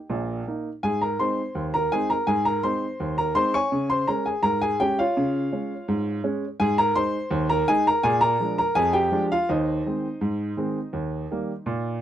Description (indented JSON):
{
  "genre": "ragtime piano",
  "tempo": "83 BPM",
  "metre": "2/4",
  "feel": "straight",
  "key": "Ab major",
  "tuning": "A4 = 439 Hz",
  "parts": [
    { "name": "warm upright piano", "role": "solo", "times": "0.0-12.0 s", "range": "Bb1 to Db6", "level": "-22 LUFS", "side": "equal", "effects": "none" }
  ],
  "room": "little or no reverb",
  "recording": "dry, close 1970s-style studio recording",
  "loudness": "-22 LUFS",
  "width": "side -11 dB against mid",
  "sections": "0.8-12.0 A section",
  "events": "none",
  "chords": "0.0 Eb5; 0.8 Ab; 3.7 Db; 6.6 Ab; 8.0 Bb7; 9.5 Ab/Eb; 10.9 Eb",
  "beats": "0.11 | 0.83 1.56 | 2.28 3.00 | 3.72 4.45 | 5.17 5.88 | 6.60 7.32 | 8.04 8.76 | 9.48 10.21 | 10.93 11.66"
}